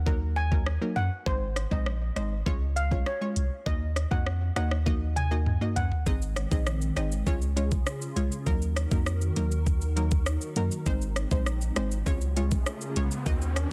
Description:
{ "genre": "dancehall", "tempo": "100 BPM", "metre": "4/4", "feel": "straight", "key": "Eb dorian", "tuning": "A4 = 438 Hz", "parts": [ { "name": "punchy sub bass", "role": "bass", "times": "0.0-13.7 s", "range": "Ab1 to Gb2", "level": "-31 LUFS", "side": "equal", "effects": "none" }, { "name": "analog pluck", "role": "accompaniment", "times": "0.1-13.7 s", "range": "Gb3 to Eb5", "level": "-36 LUFS", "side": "equal", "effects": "chorus, sidechain pumping" }, { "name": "island pop drum kit", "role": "drums", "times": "0.1-13.7 s", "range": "hi-hat, kick drum, rim click, shaker, toms", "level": "-31 LUFS", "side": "equal", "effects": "overdrive, vintage 12-bit sampler grit" }, { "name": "steel pan", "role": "melody", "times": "0.4-5.9 s", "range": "C5 to Ab5", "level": "-37 LUFS", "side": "equal", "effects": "tape echo" }, { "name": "hollow soft pad", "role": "sustained chords", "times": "6.3-13.7 s", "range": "Db3 to Bb4", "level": "-40 LUFS", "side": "equal", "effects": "ensemble chorus, sidechain pumping" }, { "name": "riser", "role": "sound effects", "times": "11.6-13.7 s", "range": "none", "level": "-43 LUFS", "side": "equal", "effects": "none" } ], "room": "little or no reverb", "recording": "dense, heavily limited modern master", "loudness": "-28 LUFS", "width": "mono", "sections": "0.0-6.1 A section; 6.1-13.7 B section", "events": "drum fill 4.9-6.1; riser 11.6-13.7", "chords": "0.0 Ebm; 1.3 Ab; 2.5 Db; 3.7 Ebm; 6.1 Ab; 7.3 Db; 8.5 Ebm; 10.9 Ab; 12.1 Db" }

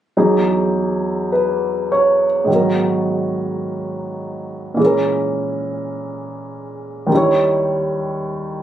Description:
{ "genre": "jazz", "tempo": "52 BPM", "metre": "4/4", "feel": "swing 66% on 8ths", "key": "unclear", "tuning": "A4 = 440 Hz", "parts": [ { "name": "warm concert grand piano", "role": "accompaniment", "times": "0.2-8.6 s", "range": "D#2 to C#5", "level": "-16 LUFS", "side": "right 1 dB", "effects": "none" } ], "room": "light reverb", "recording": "recorded on a phone in the room, club reverb", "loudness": "-16 LUFS", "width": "side -11 dB against mid", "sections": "0.2-8.6 A section", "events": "none", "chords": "0.2 Emaj9; 2.5 G#m7; 4.8 A#m7b5; 7.1 D#7b9" }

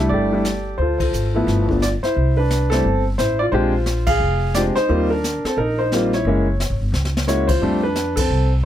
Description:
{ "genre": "jazz piano trio", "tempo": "176 BPM", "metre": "4/4", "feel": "swing 62% on 8ths", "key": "unclear", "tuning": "A4 = 437 Hz", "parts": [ { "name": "warm concert grand piano", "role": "melody", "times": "0.0-8.5 s", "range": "F3 to F5", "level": "-19 LUFS", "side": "equal", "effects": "none" }, { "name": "upright bass", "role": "bass", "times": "0.0-8.7 s", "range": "F1 to F2", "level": "-21 LUFS", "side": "equal", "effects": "none" }, { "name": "jazz brush drum kit", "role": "drums", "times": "0.1-8.7 s", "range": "brushed snare drum, crash cymbal, hi-hat, kick drum, ride cymbal, snare drum", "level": "-26 LUFS", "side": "left 1 dB", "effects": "none" } ], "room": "little or no reverb", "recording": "none", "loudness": "-17 LUFS", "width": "side -11 dB against mid", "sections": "0.0-2.2 A section; 2.2-8.7 B section", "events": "band accent 1.0, 4.0, 8.1; drum fill 6.9-7.3", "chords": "0.0 C6 (rootless); 0.8 Dm7; 1.5 G13; 2.2 C69; 3.5 Bb13; 4.9 Eb6; 6.3 F#9; 7.6 F6" }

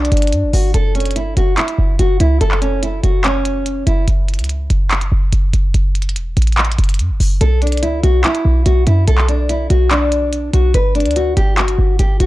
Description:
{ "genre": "hip hop, trap", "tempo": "144 BPM", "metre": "4/4", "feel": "half-time", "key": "B minor", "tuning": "A4 = 440 Hz", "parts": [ { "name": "nylon-string guitar", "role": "melody", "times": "0.0-4.0, 7.4-12.3 s", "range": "C#4 to B4", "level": "-18 LUFS", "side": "left 1 dB", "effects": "none" }, { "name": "short 808-style bass", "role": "bass", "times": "0.0-12.3 s", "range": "E1 to G2", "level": "-14 LUFS", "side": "equal", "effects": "none" }, { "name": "minimal click drum kit", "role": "drums", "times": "0.0-12.3 s", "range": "handclaps, hi-hat", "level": "-21 LUFS", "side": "equal", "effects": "none" } ], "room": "digital ambience", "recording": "dry, gritty hardware recording, transformer saturation, cassette tape", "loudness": "-13 LUFS", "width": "side -17 dB against mid", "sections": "0.0-12.3 A section", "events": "none", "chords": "0.0 Gmaj7; 0.7 N.C.; 7.4 Bm; 10.7 Gmaj7(no3)" }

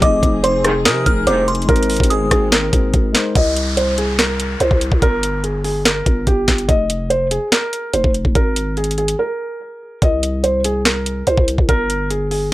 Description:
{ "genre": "hip hop, trap", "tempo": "144 BPM", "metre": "4/4", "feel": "half-time", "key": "C minor", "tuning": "A4 = 442 Hz", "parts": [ { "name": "felt-muted upright piano", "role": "melody", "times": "0.0-12.5 s", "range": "G4 to Eb5", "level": "-19 LUFS", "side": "right 1 dB", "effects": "low-pass filter" }, { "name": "delicate synth tine bell", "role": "second line", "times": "0.0-3.3 s", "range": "C6 to F6", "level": "-23 LUFS", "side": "equal", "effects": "chorus, analog delay" }, { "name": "tine electric piano", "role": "accompaniment", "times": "0.0-3.4 s", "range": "F3 to C5", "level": "-23 LUFS", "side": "left 3 dB", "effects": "low-pass filter" }, { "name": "dark chamber string section", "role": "sustained chords", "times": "0.0-3.3 s", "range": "F3 to Ab4", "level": "-29 LUFS", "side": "left 2 dB", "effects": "none" }, { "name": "growling 808-style bass", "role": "bass", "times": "0.0-12.5 s", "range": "F1 to C3", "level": "-21 LUFS", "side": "equal", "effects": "none" }, { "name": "trap drum kit", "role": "drums", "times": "0.0-12.4 s", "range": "hi-hat, kick drum, rim click, snare drum", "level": "-16 LUFS", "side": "equal", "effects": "none" }, { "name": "warm brass ensemble", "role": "stabs", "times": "0.6-1.6 s", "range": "C2 to Eb3", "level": "-22 LUFS", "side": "equal", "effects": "none" }, { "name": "downlifter", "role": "sound effects", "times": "3.4-6.7 s", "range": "none", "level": "-28 LUFS", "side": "left 1 dB", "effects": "none" } ], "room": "little or no reverb", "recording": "dry, gritty hardware recording", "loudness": "-14 LUFS", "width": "side -16 dB against mid", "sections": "0.0-3.4 A section; 3.4-12.5 B section", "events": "break 9.2-10.0", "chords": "0.0 Fm7; 1.7 Abadd9; 3.4 Cm7; 5.0 Gm; 6.7 Fsus4; 8.4 Absus2; 10.0 Cm7; 11.7 Gm" }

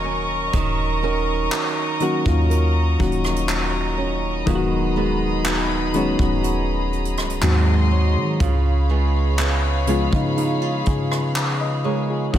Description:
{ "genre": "contemporary R&B", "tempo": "61 BPM", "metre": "4/4", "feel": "straight", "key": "unclear", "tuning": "A4 = 440 Hz", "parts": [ { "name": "soft electric-piano-like synth keys", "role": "accompaniment", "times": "0.0-12.4 s", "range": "Db3 to Eb5", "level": "-24 LUFS", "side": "left 4 dB", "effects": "chorus" }, { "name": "warm studio string section", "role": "sustained chords", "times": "0.0-12.4 s", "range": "Gb4 to Db6", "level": "-27 LUFS", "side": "left 2 dB", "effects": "none" }, { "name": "flamenco guitar", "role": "arpeggios", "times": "0.0-12.4 s", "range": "Ab2 to Bb4", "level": "-27 LUFS", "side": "right 9 dB", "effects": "digital delay" }, { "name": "soft 808-style bass", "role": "bass", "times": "0.0-12.4 s", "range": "Db1 to Eb3", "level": "-22 LUFS", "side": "equal", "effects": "none" }, { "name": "soft brush drum kit", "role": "drums", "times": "0.5-12.4 s", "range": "handclaps, hi-hat, kick drum, rim click", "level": "-25 LUFS", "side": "equal", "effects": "none" } ], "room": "little or no reverb", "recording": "none", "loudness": "-18 LUFS", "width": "side -11 dB against mid", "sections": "0.0-12.3 A section", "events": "none", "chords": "0.0 Ebm7; 4.5 Abm7/Eb; 7.4 Ab7; 8.4 Db7" }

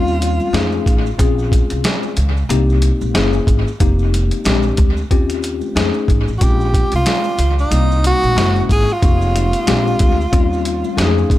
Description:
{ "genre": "hip hop, jazz-hop", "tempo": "92 BPM", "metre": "4/4", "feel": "swing 58% on 16ths", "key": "Bb dorian", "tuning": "A4 = 440 Hz", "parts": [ { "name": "breathy tenor saxophone", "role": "melody", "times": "0.0-0.9, 6.4-11.3 s", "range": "Eb4 to Ab4", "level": "-20 LUFS", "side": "right 1 dB", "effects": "dub echo" }, { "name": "mellow tine electric piano", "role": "accompaniment", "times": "0.0-11.4 s", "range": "G3 to G#4", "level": "-20 LUFS", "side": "left 6 dB", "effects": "medium stereo tremolo" }, { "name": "upright bass", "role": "bass", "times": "0.0-11.4 s", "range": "F1 to F2", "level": "-17 LUFS", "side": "equal", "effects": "none" }, { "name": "maracas and congas", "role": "percussion", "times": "0.1-11.4 s", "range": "none", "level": "-34 LUFS", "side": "right 6 dB", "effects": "dub echo" }, { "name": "boom bap sampler-style drum kit", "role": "drums", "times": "0.2-11.4 s", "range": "hi-hat, kick drum, snare drum", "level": "-17 LUFS", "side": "equal", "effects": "dub echo" } ], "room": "small room ambience", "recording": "echo-heavy mix", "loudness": "-13 LUFS", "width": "side -15 dB against mid", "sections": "0.0-11.4 A section", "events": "none", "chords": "0.0 Eb13; 0.5 F7alt; 1.2 Bbm9; 2.5 Cm7; 3.1 Gb9; 3.8 F9sus4; 4.5 Bb13; 5.1 Eb13; 5.8 F7alt; 6.4 Bbm9; 7.7 Cm7; 8.4 Gb9; 9.0 F9sus4; 9.7 Bb13; 10.3 Eb13" }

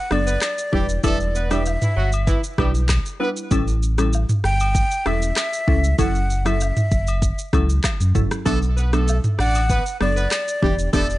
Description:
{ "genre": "afrobeats", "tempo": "97 BPM", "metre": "4/4", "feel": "straight", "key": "B minor", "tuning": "A4 = 440 Hz", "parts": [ { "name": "breathy mellow silver concert flute", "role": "melody", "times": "0.0-11.2 s", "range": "D5 to G5", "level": "-24 LUFS", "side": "equal", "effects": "tape echo" }, { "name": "glassy wavetable pluck", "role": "accompaniment", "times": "0.1-11.2 s", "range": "E3 to B4", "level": "-25 LUFS", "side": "equal", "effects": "chorus" }, { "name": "sub bass with octave", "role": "bass", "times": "0.1-11.2 s", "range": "E1 to F#2", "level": "-20 LUFS", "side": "equal", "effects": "none" }, { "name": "afro-pop drum kit", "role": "drums", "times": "0.1-11.2 s", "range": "handclaps, kick drum, rim click, shaker, toms", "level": "-22 LUFS", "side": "equal", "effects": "none" }, { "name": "agogo bells and woodblock", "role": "percussion", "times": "0.1-11.1 s", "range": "none", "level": "-33 LUFS", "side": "left 6 dB", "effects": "none" }, { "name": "warm horn section", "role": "second line", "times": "0.3-3.3, 8.5-11.1 s", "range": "E3 to D5", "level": "-27 LUFS", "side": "right 2 dB", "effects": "tape echo" } ], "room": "small room ambience", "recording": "nothing above 10.5 kHz", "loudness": "-18 LUFS", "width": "side -17 dB against mid", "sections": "0.0-11.2 A section", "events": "none", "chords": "0.0 Bm7; 0.7 Em7; 3.5 A7; 6.0 F#m7; 8.5 Bm7; 10.6 Em7" }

